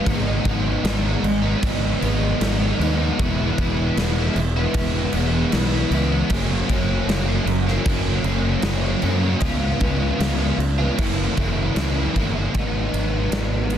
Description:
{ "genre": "rock, shoegaze and dream pop", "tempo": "77 BPM", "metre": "4/4", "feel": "straight", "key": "G# minor", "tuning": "A4 = 440 Hz", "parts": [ { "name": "biting overdriven guitar", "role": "riff", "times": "0.0-13.8 s", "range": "F#2 to E#4", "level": "-22 LUFS", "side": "equal", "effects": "analog chorus" }, { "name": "fuzz fingered electric bass", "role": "bass", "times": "0.1-13.8 s", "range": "E1 to F#2", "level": "-23 LUFS", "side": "equal", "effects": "overdrive" }, { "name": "huge arena drum kit", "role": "drums", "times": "0.1-13.8 s", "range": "crash cymbal, kick drum, ride cymbal, snare drum", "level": "-25 LUFS", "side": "equal", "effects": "none" } ], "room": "small room ambience", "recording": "dense, heavily limited modern master", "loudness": "-18 LUFS", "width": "side -9 dB against mid", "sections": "0.0-12.5 A section; 12.5-13.8 B section", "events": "none", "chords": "0.1 G#m; 3.2 E; 6.3 F#; 9.4 C#5; 11.0 F#7; 12.5 G#m", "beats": "| 0.07 0.85 1.63 2.41 | 3.19 3.97 4.75 5.53 | 6.31 7.09 7.87 8.65 | 9.43 10.21 10.99 11.77 | 12.54 13.32" }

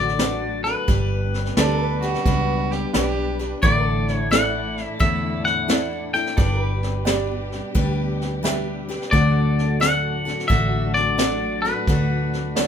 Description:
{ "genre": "honky-tonk and classic country", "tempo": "87 BPM", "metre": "4/4", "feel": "swing 66% on 8ths", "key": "D major", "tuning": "A4 = 440 Hz", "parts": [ { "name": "twangy electric guitar", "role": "melody", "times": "0.0-12.7 s", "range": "B4 to G5", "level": "-24 LUFS", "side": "left 3 dB", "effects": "none" }, { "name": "picked steel-string acoustic guitar", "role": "accompaniment", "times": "0.0-12.7 s", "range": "A2 to B4", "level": "-27 LUFS", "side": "left 4 dB", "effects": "none" }, { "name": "dark chamber string section", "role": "sustained chords", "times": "0.0-12.7 s", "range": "A2 to B4", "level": "-32 LUFS", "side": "left 1 dB", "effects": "none" }, { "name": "pedal steel guitar", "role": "sustained chords", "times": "0.0-12.7 s", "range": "A4 to D5", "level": "-34 LUFS", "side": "right 2 dB", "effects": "none" }, { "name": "vintage muted fingered electric bass", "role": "bass", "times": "0.0-12.7 s", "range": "G1 to E2", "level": "-25 LUFS", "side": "right 1 dB", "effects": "none" }, { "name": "vintage brush drum kit", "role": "drums", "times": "0.1-12.7 s", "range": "hi-hat, kick drum, snare drum", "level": "-23 LUFS", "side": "equal", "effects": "none" }, { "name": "warm upright piano", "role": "accompaniment", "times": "0.2-12.7 s", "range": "D4 to E5", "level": "-28 LUFS", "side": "right 6 dB", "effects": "none" }, { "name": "warm fiddle", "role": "second line", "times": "1.6-3.5 s", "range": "F#4 to A4", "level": "-27 LUFS", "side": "right 5 dB", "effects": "none" } ], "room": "light reverb", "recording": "minimal, uncompressed stereo recording", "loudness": "-19 LUFS", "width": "side -8 dB against mid", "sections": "0.0-12.7 A section", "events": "none", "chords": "0.0 D; 0.9 G; 3.6 Asus4; 6.4 G; 9.1 D", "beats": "0.20 | 0.88 1.57 2.25 2.94 | 3.63 4.31 5.00 5.69 | 6.37 7.06 7.75 8.43 | 9.12 9.81 10.50 11.18 | 11.87 12.56" }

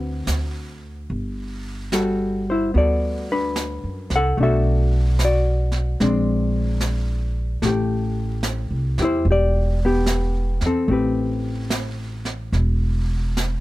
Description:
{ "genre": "jazz ballad", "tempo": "73 BPM", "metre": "4/4", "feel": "swing 66% on 8ths", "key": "A dorian", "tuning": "A4 = 440 Hz", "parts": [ { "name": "hollow-body jazz guitar", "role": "accompaniment", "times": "0.0-13.6 s", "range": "D3 to F#5", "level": "-22 LUFS", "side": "left 2 dB", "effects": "none" }, { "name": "upright bass", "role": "bass", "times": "0.0-13.6 s", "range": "E1 to F#2", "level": "-22 LUFS", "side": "equal", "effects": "none" }, { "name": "jazz brush drum kit", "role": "drums", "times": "0.3-13.6 s", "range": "brushed snare drum, hi-hat, snare drum", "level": "-29 LUFS", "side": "right 2 dB", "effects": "none" } ], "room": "little or no reverb", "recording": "close, detailed microphones", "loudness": "-19 LUFS", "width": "side -17 dB against mid", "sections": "0.0-13.6 A section", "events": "none", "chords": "0.0 D6; 1.1 Gmaj9; 4.4 Bm7; 6.0 Bb9; 7.6 Am9", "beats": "0.27 | 1.09 1.92 2.74 3.55 | 4.37 5.19 6.00 6.81 | 7.62 8.43 9.24 10.06 | 10.88 11.70 12.53 13.37" }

